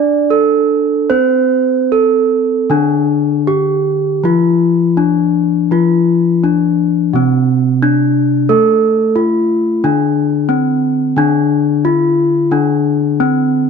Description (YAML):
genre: gamelan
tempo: 76-90 BPM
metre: 4/4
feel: straight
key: D slendro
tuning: A4 = 440 Hz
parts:
  - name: gamelan-type bronze metallophone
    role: melody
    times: 0.0-13.7 s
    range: C4-25c to D5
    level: -13 LUFS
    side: equal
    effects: none
  - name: gamelan-type bronze metallophone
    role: accompaniment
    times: 0.0-13.7 s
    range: C3-25c to D4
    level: -16 LUFS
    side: left 2 dB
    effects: none
room: moderate plate reverb, RT60 2.5 s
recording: dark, warm production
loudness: -11 LUFS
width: side -5 dB against mid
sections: 0.0-8.5 A section; 8.5-13.7 B section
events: none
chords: none